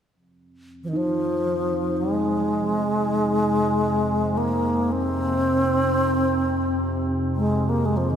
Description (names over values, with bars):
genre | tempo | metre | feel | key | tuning
world meditative, free-time meditation music | free time | none | none | F minor pentatonic | A4 = 443 Hz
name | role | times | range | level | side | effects
analog drone | drone | 0.7-8.2 s | F2 to C3 | -27 LUFS | equal | chorus
breathy bright bass flute | melody | 0.8-8.2 s | Eb3 to C4 | -22 LUFS | equal | diffuse ambient delay
bronze singing bowl | texture | 0.9-8.2 s | Eb4 | -30 LUFS | left 1 dB | none
room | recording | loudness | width
wet cathedral reverb, RT60 5.0 s | in a vast, echoing space | -20 LUFS | side -8 dB against mid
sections
0.1-8.2 A section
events
none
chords
none